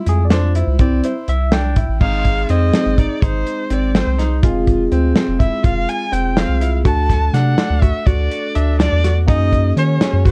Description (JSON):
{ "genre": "progressive instrumental, band music in an uneven meter", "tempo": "248 BPM (eighths)", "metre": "5/8", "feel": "straight", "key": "unclear", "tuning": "A4 = 438 Hz", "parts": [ { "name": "barky tine electric piano", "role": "accompaniment", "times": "0.0-10.3 s", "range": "G3 to G5", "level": "-26 LUFS", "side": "equal", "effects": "phaser" }, { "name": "bright grand piano", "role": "arpeggios", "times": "0.0-10.3 s", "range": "C4 to F#4", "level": "-26 LUFS", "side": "equal", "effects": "none" }, { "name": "round analog bass", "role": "bass", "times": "0.1-10.3 s", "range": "F1 to Eb3", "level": "-19 LUFS", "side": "equal", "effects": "none" }, { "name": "warm soul drum kit", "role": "drums", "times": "0.1-10.3 s", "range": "crash cymbal, hi-hat, kick drum, snare drum", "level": "-19 LUFS", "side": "equal", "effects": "none" }, { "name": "rich erhu", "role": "melody", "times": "2.0-10.3 s", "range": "C5 to A5", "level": "-25 LUFS", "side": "equal", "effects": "none" } ], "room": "light reverb", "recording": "cassette tape", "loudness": "-16 LUFS", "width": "mono", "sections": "0.0-2.0 A section; 2.0-10.3 B section", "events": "tine electric piano solo 0.0-2.0", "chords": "0.0 Fmadd9; 0.8 C; 2.0 Ab; 4.4 Fm; 6.9 D; 9.3 F#add9", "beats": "0.07 0.32 0.56 | 0.80 1.04 1.28 1.53 1.77 | 2.01 2.25 2.50 2.74 2.98 | 3.22 3.46 3.71 3.95 4.19 | 4.43 4.67 4.92 5.16 5.40 | 5.64 5.89 6.13 6.37 6.61 | 6.86 7.10 7.34 7.58 7.83 | 8.07 8.31 8.55 8.80 9.04 | 9.28 9.53 9.77 10.01 10.26" }